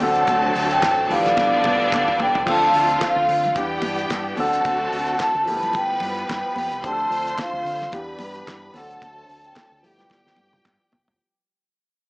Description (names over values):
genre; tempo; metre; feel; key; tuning
disco; 110 BPM; 4/4; swing 56% on 16ths; D dorian; A4 = 440 Hz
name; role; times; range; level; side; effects
vibraphone with soft mallets; melody; 0.0-10.9 s; D5 to A5; -21 LUFS; equal; low-pass filter
clear studio string section; second line; 0.0-11.2 s; D4 to C6; -27 LUFS; equal; none
warm grand piano; accompaniment; 0.0-11.2 s; E3 to A4; -29 LUFS; equal; tube saturation, low-pass filter
clear chamber string section; sustained chords; 0.0-11.2 s; D3 to G4; -28 LUFS; equal; low-pass filter
fingered electric bass with an envelope filter; bass; 0.0-11.2 s; F1 to D3; -36 LUFS; equal; none
damped 70s drum kit; drums; 0.0-11.2 s; crash cymbal, hi-hat, kick drum, snare drum, toms; -31 LUFS; equal; none
congas; percussion; 0.0-11.1 s; none; -33 LUFS; equal; none
group handclap; percussion; 0.8-10.8 s; none; -32 LUFS; right 1 dB; none
room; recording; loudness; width
moderate large studio reverb, RT60 0.9 s, studio ambience; small speaker sound; -18 LUFS; side -32 dB against mid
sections
0.0-2.5 A section; 2.5-11.2 B section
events
drum fill 1.4-2.5, 10.1-11.2; fade-out 2.5-11.2; filter sweep 2.5-11.2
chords
0.0 D7; 1.1 G13; 2.5 Dm7; 3.6 Em7; 4.4 D7; 5.5 G13; 6.8 Dm7; 7.9 Em7; 8.7 D7; 9.8 G13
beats
| 0.29 0.83 1.38 1.92 | 2.47 3.02 3.56 4.11 | 4.65 5.20 5.75 6.29 | 6.84 7.38 7.93 8.47 | 9.02 9.56 10.11 10.65